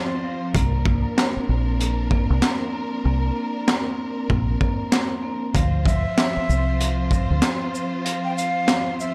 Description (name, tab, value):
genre	hip hop, boom-bap hip-hop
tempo	96 BPM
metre	4/4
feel	swing 60% on 16ths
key	unclear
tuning	A4 = 441 Hz
part	vibraphone with soft mallets	accompaniment	0.0-9.1 s	F3 to C4	-29 LUFS	equal	high-pass filter, low-pass filter
part	warm symphonic string section	sustained chords	0.0-9.1 s	F3 to C5	-35 LUFS	equal	high-pass filter, low-pass filter
part	deep dub fingered electric bass	bass	0.5-7.4 s	Bb1 to D2	-24 LUFS	equal	none
part	crunchy breakbeat drum kit	drums	0.5-9.1 s	handclaps, hi-hat, kick drum, shaker, snare drum	-25 LUFS	equal	none
part	breathy jazz flute	melody	5.8-9.1 s	E5 to G5	-29 LUFS	equal	high-pass filter, low-pass filter, digital delay
room	light reverb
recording	none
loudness	-22 LUFS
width	mono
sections	0.0-9.1 A section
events	hi-hats muted 3.0-5.5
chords	0.0 Dm7 (rootless); 0.5 C9sus4; 5.5 Dm9